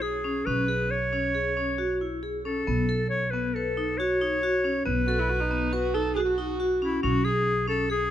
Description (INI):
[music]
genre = contemporary instrumental, chamber music in an uneven meter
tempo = 137 BPM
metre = 5/4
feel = straight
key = B mixolydian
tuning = A4 = 438 Hz
[part]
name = bright clarinet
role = melody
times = 0.0-8.1 s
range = E4 to C#5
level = -27 LUFS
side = left 1 dB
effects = none
[part]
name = vibraphone with hard mallets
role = arpeggios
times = 0.0-8.0 s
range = B3 to B4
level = -29 LUFS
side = left 1 dB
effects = none
[part]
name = upright bass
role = bass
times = 0.0-8.1 s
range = B1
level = -31 LUFS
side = right 2 dB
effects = none
[part]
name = warm viola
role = second line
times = 5.1-6.9 s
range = D#4 to A4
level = -30 LUFS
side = right 2 dB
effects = none
[sound]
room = light reverb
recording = close, detailed microphones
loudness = -24 LUFS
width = side -11 dB against mid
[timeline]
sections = 0.0-8.1 A section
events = none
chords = 0.0 C#5/B; 2.7 B7(no3); 7.0 C#5/B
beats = 0.03 | 0.47 0.91 1.35 1.79 2.23 | 2.67 3.11 3.56 4.00 4.43 | 4.87 5.30 5.74 6.17 6.60 | 7.04 7.47 7.90